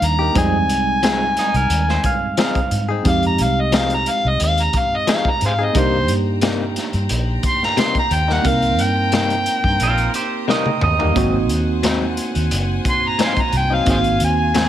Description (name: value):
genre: straight-eighth soul blues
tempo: 89 BPM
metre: 4/4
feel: straight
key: C minor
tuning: A4 = 440 Hz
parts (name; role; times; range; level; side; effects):
- overdriven harmonica; melody; 0.0-14.7 s; Ab4 to C6; -19 LUFS; left 1 dB; slapback echo, plate reverb
- bright tine electric piano; accompaniment; 0.0-14.7 s; G3 to Bb4; -23 LUFS; right 4 dB; medium stereo tremolo, plate reverb
- vintage muted fingered electric bass; bass; 0.0-14.7 s; Gb1 to Ab2; -21 LUFS; equal; none
- crunchy breakbeat drum kit; drums; 0.0-14.7 s; hi-hat, kick drum, snare drum, toms; -22 LUFS; equal; none
- direct-recorded clean electric guitar; stabs; 0.2-14.7 s; Ab2 to Ab4; -23 LUFS; left 6 dB; plate reverb
- electric guitar at the edge of break-up; second line; 1.4-2.9, 9.8-12.1 s; Eb4 to F5; -23 LUFS; right 6 dB; spring reverb, plate reverb
- warm studio string section; sustained chords; 5.8-14.7 s; C5 to Bb5; -30 LUFS; left 3 dB; plate reverb
room: light reverb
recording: none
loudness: -15 LUFS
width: side -11 dB against mid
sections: 0.0-14.7 A section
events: drum fill 10.5-11.2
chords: 0.4 Fm7; 5.8 Cm7; 11.2 Ab7